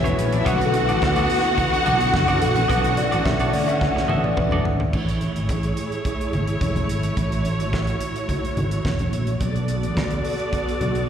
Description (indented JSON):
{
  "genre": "disco",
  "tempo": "107 BPM",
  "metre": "4/4",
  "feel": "straight",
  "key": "unclear",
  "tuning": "A4 = 440 Hz",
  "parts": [
    { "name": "bright studio string section", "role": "second line", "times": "0.0-4.6 s", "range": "B3 to F#5", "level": "-22 LUFS", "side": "equal", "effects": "slapback echo" },
    { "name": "clean electric guitar", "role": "accompaniment", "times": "0.0-4.8 s", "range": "A3 to E5", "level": "-30 LUFS", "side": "right 5 dB", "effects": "slapback echo" },
    { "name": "mellow tine electric piano", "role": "accompaniment", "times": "0.0-5.0 s", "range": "C#3 to G#5", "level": "-25 LUFS", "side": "left 5 dB", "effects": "medium stereo tremolo, slapback echo" },
    { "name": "dark studio string section", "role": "sustained chords", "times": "0.0-11.1 s", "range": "C#3 to D5", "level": "-27 LUFS", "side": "right 2 dB", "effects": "none" },
    { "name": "fingered electric bass", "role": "bass", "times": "0.0-11.0 s", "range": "E1 to D2", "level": "-23 LUFS", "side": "right 1 dB", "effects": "none" },
    { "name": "congas", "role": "percussion", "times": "0.0-10.9 s", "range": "none", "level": "-31 LUFS", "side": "left 3 dB", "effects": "slapback echo" },
    { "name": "damped 70s drum kit", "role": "drums", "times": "0.1-11.1 s", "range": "crash cymbal, hi-hat, kick drum, snare drum, toms", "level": "-28 LUFS", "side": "right 1 dB", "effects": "none" }
  ],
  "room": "light reverb",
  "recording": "live gig heard through the venue's PA, recital hall reverb",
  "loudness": "-19 LUFS",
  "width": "side -8 dB against mid",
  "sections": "0.0-4.9 A section; 4.9-11.1 B section",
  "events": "tine electric piano solo 0.0-4.9; drum fill 3.8-4.9",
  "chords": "0.0 Bm7; 4.9 Amaj7; 9.4 Bm7"
}